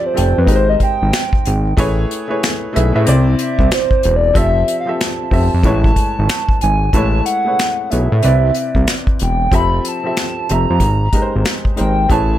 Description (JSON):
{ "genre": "R&B, neo-soul", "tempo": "93 BPM", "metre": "4/4", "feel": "swing 61% on 16ths", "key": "unclear", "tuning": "A4 = 440 Hz", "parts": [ { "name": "hollow clarinet-like synth lead", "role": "melody", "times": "0.0-12.4 s", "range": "B4 to B5", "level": "-18 LUFS", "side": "right 1 dB", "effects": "chorus, phaser, plate reverb" }, { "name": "warm upright piano", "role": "accompaniment", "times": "0.0-12.4 s", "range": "C3 to G5", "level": "-20 LUFS", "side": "left 1 dB", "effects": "plate reverb" }, { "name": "fat analog bass", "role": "bass", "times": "0.2-12.4 s", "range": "E1 to A2", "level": "-15 LUFS", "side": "equal", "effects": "none" }, { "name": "unplugged drum kit", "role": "drums", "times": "0.2-12.3 s", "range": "finger snaps, hi-hat, kick drum, snare drum", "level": "-17 LUFS", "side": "equal", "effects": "none" } ], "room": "light reverb", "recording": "none", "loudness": "-13 LUFS", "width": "side -12 dB against mid", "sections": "0.0-6.9 A section; 6.9-12.4 B section", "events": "soft synth lead solo 0.0-6.9", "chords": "0.5 G#maj9; 1.8 Amaj9; 3.1 Cadd9; 4.4 Fmaj9; 5.6 Amaj9; 8.2 Cmaj9; 9.5 Fmaj9; 10.8 G#maj9", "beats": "0.48 1.13 | 1.77 2.42 3.06 3.71 | 4.36 5.00 5.64 6.29 | 6.93 7.58 8.23 8.87 | 9.52 10.16 10.81 11.45 | 12.10" }